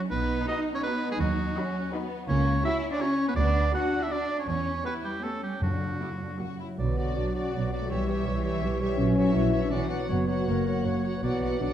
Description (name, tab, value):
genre	quick classical-period movement for symphony orchestra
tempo	152-168 BPM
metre	3/4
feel	rubato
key	B minor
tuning	A4 = 440 Hz
part	clear studio violin section	melody	0.0-11.7 s	D5 to D6	-42 LUFS	left 6 dB	none
part	warm studio violin section	second line	0.0-11.7 s	A#3 to D5	-37 LUFS	left 2 dB	none
part	rich studio cello section	bass	0.0-11.7 s	D3 to F#4	-32 LUFS	right 1 dB	none
part	bright oboe	second line	0.1-11.7 s	F#4 to F#5	-33 LUFS	right 1 dB	none
part	rich symphonic double bass section	bass	0.1-11.7 s	F#1 to F#2	-30 LUFS	right 2 dB	none
part	rich studio viola section	accompaniment	0.5-11.7 s	A#3 to G4	-39 LUFS	equal	none
part	timpani	percussion	5.6-6.2 s	F#2	-33 LUFS	equal	none
part	dark French horn section	sustained chords	6.6-11.7 s	F#3 to E4	-30 LUFS	left 3 dB	none
part	clear clarinet	second line	6.8-11.7 s	F#4 to C#5	-36 LUFS	left 2 dB	none
part	dark bassoon	accompaniment	6.8-11.7 s	E3 to F#3	-36 LUFS	equal	none
room	wet scoring stage reverb, RT60 1.6 s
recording	dark, warm production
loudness	-25 LUFS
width	side -10 dB against mid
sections	0.0-6.8 A section; 6.8-11.7 B section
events	none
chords	0.1 B; 1.2 B/D#; 2.3 F#7/C#; 3.4 Bm/D; 4.5 C#m7b5/E; 5.6 Bm/F#; 6.4 F#; 6.8 Bm; 7.9 C#m7b5/B; 9.0 F#7/A#; 9.7 Bm; 10.1 F#; 11.2 Bm